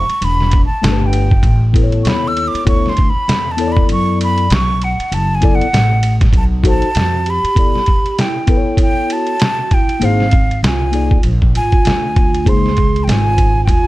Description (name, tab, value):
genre	hip hop, jazz-hop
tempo	98 BPM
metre	4/4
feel	swing 59% on 16ths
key	unclear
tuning	A4 = 441 Hz
part	breathy silver concert flute	melody	0.0-13.9 s	E#5 to E6	-19 LUFS	right 1 dB	none
part	upright bass	bass	0.0-13.9 s	E1 to F#2	-16 LUFS	equal	none
part	trip hop sampler-style drum kit	drums	0.1-13.9 s	hi-hat, kick drum, ride cymbal, snare drum	-14 LUFS	equal	none
part	mellow tine electric piano	accompaniment	0.8-12.7 s	A3 to D5	-20 LUFS	left 5 dB	analog chorus
part	vibraphone with soft mallets	second line	6.6-13.9 s	B#3 to G#4	-22 LUFS	right 5 dB	none
room	small room ambience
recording	dark, warm production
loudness	-11 LUFS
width	side -17 dB against mid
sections	0.0-7.6 A section; 7.6-13.9 B section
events	flute solo 0.0-7.6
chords	0.2 Em7; 1.4 Aadd9; 2.7 Dmaj7; 5.1 F#m11; 6.3 B7b9; 7.6 Emadd9; 10.0 G#69; 12.5 C#sus2